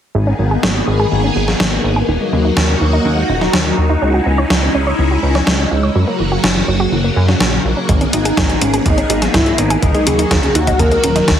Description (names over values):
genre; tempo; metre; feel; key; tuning
italo disco; 124 BPM; 4/4; straight; G# minor; A4 = 439 Hz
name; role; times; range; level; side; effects
analog pluck; arpeggios; 0.1-11.3 s; C#3 to C#5; -22 LUFS; right 3 dB; chorus, tape echo
chorused synth bass; bass; 0.1-11.4 s; D#1 to F#2; -17 LUFS; equal; tube saturation
phased string machine; sustained chords; 0.2-11.4 s; C#3 to G#4; -18 LUFS; left 1 dB; ensemble chorus, phaser
gated 80s digital drum machine; drums; 0.6-11.4 s; hi-hat, snare drum; -18 LUFS; equal; gated reverb, gated reverb snare, overdrive
electronic kick drum; drums; 7.9-11.4 s; none; -17 LUFS; equal; none
wide unison lead; melody; 8.1-11.4 s; C#4 to A#4; -17 LUFS; left 1 dB; lush chorus, tape echo
room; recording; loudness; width
light reverb; heavily compressed radio sound, multiband compression; -12 LUFS; side -9 dB against mid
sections
0.1-11.4 A section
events
filter sweep on synth arpeggio sound 0.1-11.4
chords
0.1 G#madd9; 2.1 D#m; 4.0 C#madd9; 6.0 F#; 7.9 G#madd9; 9.8 D#m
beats
| 0.15 0.63 1.12 1.60 | 2.08 2.57 3.05 3.54 | 4.02 4.50 4.99 5.47 | 5.95 6.44 6.92 7.41 | 7.89 8.37 8.86 9.34 | 9.82 10.31 10.79 11.28